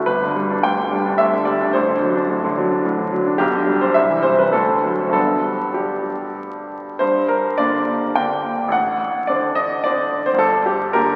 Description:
classical, romantic character piece for solo piano; 94-111 BPM; 3/4; rubato; G major, G minor from 7.0 s; A4 = 440 Hz
clear baby grand piano; solo; 0.0-11.2 s; G1 to G5; -19 LUFS; equal
wet church reverb, RT60 3.4 s; very old 78 rpm record, vinyl crackle; -19 LUFS; mono
0.0-7.0 A section; 7.0-11.2 B section
0.1 G; 1.7 D7/A; 3.4 G/B; 3.9 C; 4.5 D7; 5.1 G; 7.0 Gm; 8.7 D7/A; 10.4 Gm

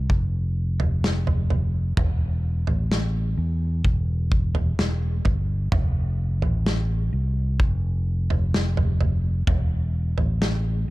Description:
pop ballad; 64 BPM; 4/4; straight; A4 = 440 Hz
fingered electric bass; bass; 0.0-10.9 s; E1 to E2; -23 LUFS; equal
loose indie drum kit; drums; 0.1-10.6 s; kick drum, snare drum, toms; -24 LUFS; equal
little or no reverb; dark, warm production; -21 LUFS; side -19 dB against mid
0.0-10.9 A section

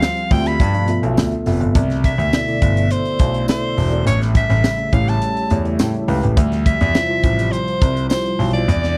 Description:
polished 1980s jazz-funk pop; 104 BPM; 4/4; straight; A4 = 441 Hz
bright soprano saxophone; melody; 0.0-9.0 s; C5 to B5; -24 LUFS; equal; slapback echo
warm analog pad; sustained chords; 0.0-9.0 s; B2 to E5; -29 LUFS; equal; chorus
tight funk drum kit; drums; 0.0-9.0 s; hi-hat, kick drum, snare drum; -20 LUFS; equal
tambourine; percussion; 0.0-8.2 s; -39 LUFS; equal
mellow tine electric piano; accompaniment; 0.3-8.7 s; B2 to A5; -25 LUFS; equal; analog chorus
clear concert grand piano; bass; 0.3-9.0 s; E1 to A2; -21 LUFS; equal
little or no reverb; dry, close 1970s-style studio recording; -17 LUFS; mono
0.0-9.0 A section
tine electric piano fill 0.9-1.8, 5.5-6.4
0.0 Dm11; 0.6 G13; 1.8 Cmaj13; 4.1 A7; 6.4 Dm11

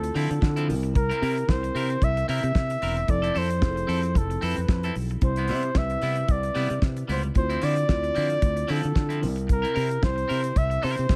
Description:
disco; 112 BPM; 4/4; swing 56% on 16ths; A4 = 440 Hz
warm flugelhorn; melody; 0.0-11.2 s; A4 to E5; -30 LUFS; equal
clean electric guitar; accompaniment; 0.0-11.0 s; F3 to Bb4; -36 LUFS; equal
mellow tine electric piano; accompaniment; 0.0-11.2 s; C3 to C5; -35 LUFS; equal
fingered electric bass; bass; 0.0-11.2 s; E1 to D3; -30 LUFS; equal
damped 70s drum kit; drums; 0.0-11.2 s; hi-hat, kick drum, snare drum; -27 LUFS; equal
little or no reverb; -25 LUFS; mono
0.0-11.2 A section
0.0 Dm9; 0.7 C7; 3.1 Fmaj7; 5.2 Cmaj7; 7.4 Dm9; 9.2 C7

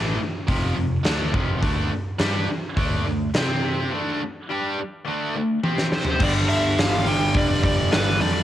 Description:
hard rock; 105 BPM; 4/4; straight; A4 = 442 Hz
tight distorted guitar; riff; 0.0-8.4 s; F2 to C5; -28 LUFS; left 8 dB; distortion, cassette tape
tight distorted guitar; riff; 0.0-8.4 s; F2 to C5; -28 LUFS; right 6 dB; distortion, cassette tape
picked electric bass; bass; 0.0-8.4 s; F1 to C3; -26 LUFS; equal; tube saturation
huge arena drum kit; drums; 0.5-8.3 s; crash cymbal, hi-hat, kick drum, snare drum, toms; -24 LUFS; equal; cassette tape
nasal lead guitar with a parked wah; melody; 6.0-8.4 s; B4 to G5; -24 LUFS; equal; overdrive, cassette tape
raw garage guitar; riff; 6.2-8.4 s; G2 to G3; -27 LUFS; right 2 dB; overdrive, cassette tape
light reverb, small room ambience; home recording on cassette; -20 LUFS; side -12 dB against mid
0.0-6.2 A section; 6.2-8.4 B section
drum fill 5.6-6.2
0.0 F5; 1.6 D5; 3.3 C5; 3.9 D5; 5.6 C5; 6.2 G5

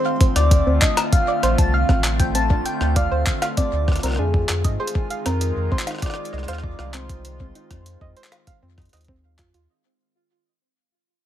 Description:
IDM; 98 BPM; 4/4; straight; A4 = 440 Hz
soft struck synth lead; melody; 0.0-9.1 s; G#4 to A5; -26 LUFS; left 2 dB; chorus, ping-pong delay
warbly tape-like pad; sustained chords; 0.0-9.7 s; D3 to F4; -28 LUFS; equal; chorus, built-in reverb
soft round pluck; arpeggios; 0.1-9.6 s; C4 to F5; -28 LUFS; right 3 dB; chorus, vintage 12-bit sampler grit, digital delay
electronic kick drum; drums; 0.2-9.5 s; -19 LUFS; equal; overdrive
jungle sampler-style drum kit; drums; 0.2-9.7 s; cowbell, handclaps, hi-hat, rim click; -26 LUFS; left 1 dB; overdrive
warm sub bass; bass; 0.4-9.7 s; A1 to Ab2; -22 LUFS; equal
digital ambience; -18 LUFS; side -11 dB against mid
0.0-9.7 A section
fade-out 0.0-9.7
0.0 Dm7; 4.5 Fm7

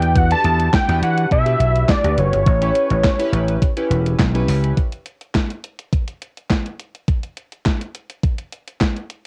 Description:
early-eighties boogie funk; 104 BPM; 4/4; straight; A4 = 439 Hz
fat analog lead; melody; 0.0-4.2 s; C#5 to A5; -22 LUFS; equal; cassette tape
chorused polysynth; accompaniment; 0.0-4.7 s; C#4 to B4; -27 LUFS; equal
vintage slap bass; bass; 0.0-4.7 s; E1 to E3; -20 LUFS; equal
crisp 8-bit digital drum machine; drums; 0.0-9.2 s; handclaps, hi-hat, kick drum, snare drum; -21 LUFS; equal; overdrive, cassette tape
light reverb; home recording on cassette; -19 LUFS; mono
0.0-4.8 A section; 4.8-9.3 B section
0.0 Em7; 2.5 A9; 4.8 N.C.

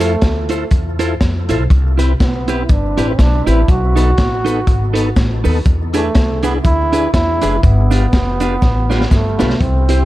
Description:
ska; 121 BPM; 4/4; swing 57% on 8ths; A4 = 441 Hz
breathy trombone; melody; 0.0-10.1 s; A3 to F#4; -20 LUFS; right 2 dB; analog delay
clean electric guitar; accompaniment; 0.0-10.0 s; D4 to C5; -22 LUFS; right 6 dB; harmonic tremolo
tonewheel organ; stabs; 0.0-10.0 s; B3 to B4; -23 LUFS; left 5 dB; chorus vibrato, stopped rotary speaker, analog delay
upright bass; bass; 0.0-10.0 s; F1 to F2; -16 LUFS; equal
crunchy breakbeat drum kit; drums; 0.0-10.0 s; hi-hat, kick drum, snare drum; -16 LUFS; equal
cabasa; percussion; 0.0-9.5 s; -42 LUFS; left 18 dB
studio ambience; dark, warm production; -12 LUFS; side -16 dB against mid
0.0-9.6 A section
drum fill 8.6-9.6
0.0 Fmaj7; 1.7 Cmaj7; 3.7 B7; 5.7 E7; 7.6 G7

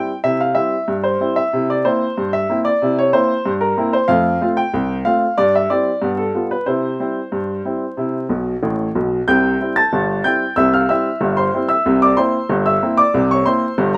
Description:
ragtime piano; 93 BPM; 2/4; straight; C major; A4 = 440 Hz
clear upright piano; solo; 0.0-14.0 s; G1 to A6; -18 LUFS; equal
light reverb; rough home demo mix, vinyl crackle; -18 LUFS; mono
0.0-9.3 A section; 9.3-14.0 A section
upright piano fill 8.3-9.3
0.0 C; 1.5 C7; 4.1 F; 5.4 C/G; 6.0 G7; 6.7 C; 11.8 C7

